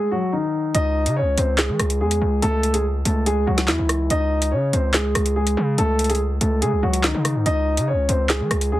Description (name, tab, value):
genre	hip hop, drill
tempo	143 BPM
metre	4/4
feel	half-time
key	C# harmonic minor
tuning	A4 = 438 Hz
part	dark concert grand piano	melody	0.0-8.8 s	D#3 to D#5	-21 LUFS	equal	low-pass filter
part	distorted 808-style bass	bass	0.7-8.8 s	C#2 to E3	-21 LUFS	equal	distortion
part	drill drum kit	drums	0.7-8.7 s	handclaps, hi-hat, rim click, snare drum	-23 LUFS	equal	none
room	light reverb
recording	heavily compressed radio sound, multiband compression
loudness	-18 LUFS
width	side -15 dB against mid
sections	0.0-8.8 A section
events	break 0.0-0.7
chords	0.0 G#5; 0.7 C#m; 4.1 C#5; 5.8 G#5/C#; 7.5 C#m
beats	0.33 | 0.75 1.17 1.58 2.00 | 2.42 2.84 3.26 3.68 | 4.10 4.52 4.94 5.36 | 5.78 6.20 6.62 7.04 | 7.46 7.88 8.30 8.72